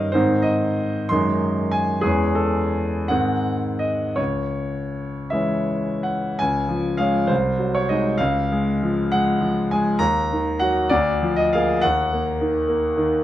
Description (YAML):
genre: classical, romantic character piece for solo piano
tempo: 52-71 BPM (dotted quarters)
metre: 6/8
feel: rubato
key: C# minor, Db major from 6.4 s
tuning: A4 = 440 Hz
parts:
  - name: bright concert grand piano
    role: solo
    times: 0.0-13.2 s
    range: C2 to B#5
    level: -19 LUFS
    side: equal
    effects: none
room: light reverb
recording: close, detailed microphones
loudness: -19 LUFS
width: side -13 dB against mid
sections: 0.0-6.4 A section; 6.4-13.2 B section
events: none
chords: 0.1 G#; 1.1 G#7/F#; 2.0 C#m/E; 3.1 G#7; 4.2 C#m; 6.4 Db; 7.3 Ab7/C; 8.2 Db; 10.0 Ebm; 10.9 Bb7/D; 11.8 Ebm